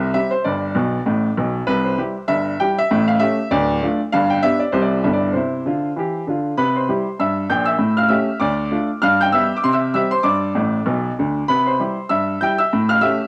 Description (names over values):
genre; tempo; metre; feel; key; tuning
jazz, stride piano; 196 BPM; 4/4; swing 58% on 8ths; C major; A4 = 440 Hz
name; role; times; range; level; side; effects
bright upright piano; solo; 0.0-13.3 s; D1 to G6; -19 LUFS; equal; cassette tape
room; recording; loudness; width
moderate spring reverb, RT60 1.2 s, small room ambience; home recording on cassette; -19 LUFS; mono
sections
0.0-6.6 A section; 6.6-13.3 A section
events
upright piano fill 0.7-1.7, 10.6-11.5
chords
0.4 G; 1.7 C; 2.9 A7; 3.5 Dm; 4.1 G; 4.7 C; 5.0 G69; 5.3 C; 7.8 A7; 8.4 Dm; 9.0 G7; 9.6 C; 10.3 G; 11.5 C; 12.7 A7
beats
0.13 | 0.44 0.75 1.05 1.36 | 1.67 1.97 2.28 2.59 | 2.89 3.20 3.51 3.81 | 4.12 4.43 4.73 5.04 | 5.35 5.66 5.96 6.27 | 6.58 6.88 7.19 7.50 | 7.80 8.11 8.41 8.72 | 9.03 9.34 9.64 9.95 | 10.26 10.56 10.87 11.18 | 11.48 11.79 12.10 12.40 | 12.71 13.02